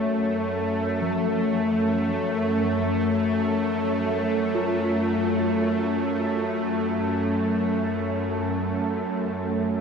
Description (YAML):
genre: dark ambient drone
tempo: free time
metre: none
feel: none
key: F# harmonic minor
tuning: A4 = 442 Hz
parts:
  - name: deep dark ambient pad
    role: sustained chords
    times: 0.0-9.8 s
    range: A4 to A5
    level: -31 LUFS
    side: right 2 dB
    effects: chorus, built-in reverb, shimmer reverb
  - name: bowed-like drone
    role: drone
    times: 0.0-9.8 s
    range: F#2 to A3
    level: -23 LUFS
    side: equal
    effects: built-in reverb
  - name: gamelan-type bronze metallophone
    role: arpeggios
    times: 1.0-9.8 s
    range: E#3 to E#4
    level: -34 LUFS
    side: equal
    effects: diffuse ambient delay, shimmer reverb
room: wet cathedral reverb, RT60 6.9 s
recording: none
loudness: -22 LUFS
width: side -6 dB against mid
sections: 0.0-9.8 A section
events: fade-in on bronze metallophone 0.0-9.8; fade-out on ambient pad 0.0-9.8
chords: 0.0 F#m